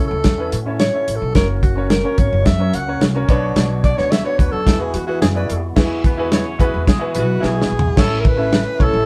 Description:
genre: uptempo 1960s-style soul.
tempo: 109 BPM.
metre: 4/4.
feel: straight.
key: unclear.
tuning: A4 = 440 Hz.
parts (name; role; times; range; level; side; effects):
warm alto saxophone; melody; 0.0-9.1 s; F#4 to F#5; -24 LUFS; equal; none.
warm grand piano; accompaniment; 0.0-9.0 s; A2 to E5; -26 LUFS; equal; none.
tonewheel organ; sustained chords; 0.0-9.1 s; E3 to C#5; -33 LUFS; equal; none.
upright bass; bass; 0.0-9.0 s; F#1 to E3; -24 LUFS; equal; none.
warm soul drum kit; drums; 0.2-8.9 s; crash cymbal, hi-hat, kick drum, ride cymbal, snare drum, toms; -18 LUFS; equal; none.
warm horn section; second line; 6.0-7.7 s; G#3 to C#5; -29 LUFS; equal; none.
vibraphone with soft mallets; second line; 7.2-9.1 s; F#4 to B4; -29 LUFS; equal; none.
room: moderate studio ambience, RT60 0.5 s.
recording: band playing live in one room.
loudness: -17 LUFS.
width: mono.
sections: 0.0-5.8 A section; 5.8-8.0 B section; 8.0-9.1 C section.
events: alto saxophone solo 0.0-5.8; drum fill 7.4-8.0.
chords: 0.0 A; 1.4 F#; 3.3 Bmadd9; 4.7 Eadd9; 8.0 A.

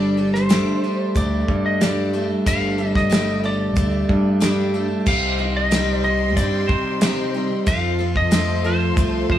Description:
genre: folk rock and heartland rock.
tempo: 92 BPM.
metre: 4/4.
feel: straight.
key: C dorian.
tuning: A4 = 440 Hz.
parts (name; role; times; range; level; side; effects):
lightly driven lead guitar; melody; 0.0-9.4 s; C5 to F5; -25 LUFS; left 1 dB; none.
picked twelve-string acoustic guitar; accompaniment; 0.0-9.4 s; G2 to A4; -27 LUFS; left 4 dB; none.
electric guitar through a small old amp; riff; 0.0-9.4 s; F2 to D4; -23 LUFS; right 2 dB; spring reverb.
modern bright picked electric bass; bass; 0.0-9.4 s; G1 to F3; -23 LUFS; equal; none.
damped 70s drum kit; drums; 0.3-9.4 s; crash cymbal, hi-hat, kick drum, snare drum; -20 LUFS; equal; none.
warm symphonic string section; sustained chords; 5.1-9.4 s; Eb4 to C6; -31 LUFS; left 3 dB; none.
room: light reverb, studio reverb.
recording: none.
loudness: -17 LUFS.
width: side -11 dB against mid.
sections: 0.0-5.1 A section; 5.1-9.4 A section.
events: none.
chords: 0.0 Gsus2; 5.1 Cm; 7.7 F.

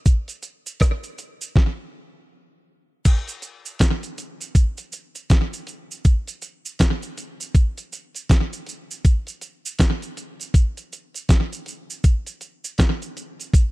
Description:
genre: reggae.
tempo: 80 BPM.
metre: 4/4.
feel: swing 61% on 16ths.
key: none.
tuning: none.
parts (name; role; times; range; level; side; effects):
clean 12-bit digital drum machine; drums; 0.1-13.7 s; crash cymbal, hi-hat, kick drum, rim click, snare drum; -17 LUFS; equal; slapback echo.
cabasa; percussion; 0.1-13.7 s; none; -34 LUFS; right 5 dB; none.
room: digital ambience.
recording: dry, close 1970s-style studio recording.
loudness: -19 LUFS.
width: side -21 dB against mid.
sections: 0.0-3.1 A section; 3.1-13.7 B section.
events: none.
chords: none.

